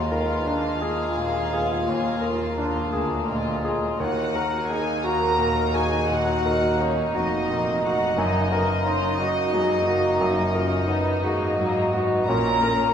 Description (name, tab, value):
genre	classical, romantic movement for piano and orchestra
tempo	58 BPM (dotted quarters)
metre	12/8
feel	rubato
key	Eb minor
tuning	A4 = 439 Hz
part	clear concert grand piano	melody	0.0-12.9 s	Eb2 to Bb4	-25 LUFS	equal	none
part	warm symphonic violin section	melody	0.0-12.9 s	Db5 to Bb5	-29 LUFS	left 3 dB	none
part	dark clarinet	second line	0.0-12.9 s	D4 to Ab4	-33 LUFS	left 2 dB	none
part	warm studio violin section	second line	0.0-12.9 s	Bb3 to Ab4	-29 LUFS	left 3 dB	none
part	dark bassoon	accompaniment	0.0-12.9 s	Ab3 to Eb4	-29 LUFS	right 3 dB	none
part	dark symphonic viola section	accompaniment	0.0-12.9 s	Db4 to Bb4	-30 LUFS	right 3 dB	none
part	dark symphonic double bass section	bass	0.0-12.9 s	F1 to Eb2	-34 LUFS	right 1 dB	none
part	rich chamber cello section	bass	0.0-12.9 s	D2 to A#2	-33 LUFS	right 1 dB	none
room	wet recital hall reverb, RT60 1.5 s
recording	recorded in a church or concert hall, lossy compression artefacts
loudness	-21 LUFS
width	side -8 dB against mid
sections	0.0-12.9 A section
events	none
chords	0.0 Bb7/Eb; 4.0 Ebm; 8.2 Ebm/Gb; 12.3 A#m